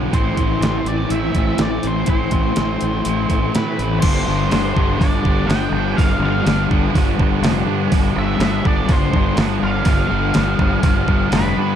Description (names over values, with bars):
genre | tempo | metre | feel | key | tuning
rock, shoegaze and dream pop | 123 BPM | 4/4 | straight | G mixolydian | A4 = 440 Hz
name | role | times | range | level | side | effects
ensemble organ-string | sustained chords | 0.0-4.0 s | C4 to A5 | -29 LUFS | right 1 dB | phaser, ensemble chorus
biting overdriven guitar | riff | 0.0-11.8 s | G2 to F4 | -24 LUFS | right 14 dB | reverse reverb
thick fuzz guitar | riff | 0.0-11.8 s | G2 to A3 | -22 LUFS | left 10 dB | distortion, ensemble chorus
fuzz fingered electric bass | bass | 0.0-11.8 s | F1 to A2 | -22 LUFS | right 1 dB | overdrive
octave-fuzz lead guitar | melody | 0.1-11.8 s | B4 to G5 | -25 LUFS | left 1 dB | distortion, slapback echo
detuned 8-bit digital drum machine | drums | 0.1-11.4 s | crash cymbal, hi-hat, kick drum, snare drum | -18 LUFS | right 1 dB | overdrive
room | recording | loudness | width
digital ambience | dark, warm production | -15 LUFS | side -9 dB against mid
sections
0.0-4.0 A section; 4.0-11.8 B section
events
none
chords
0.1 Am; 4.0 G7(no3)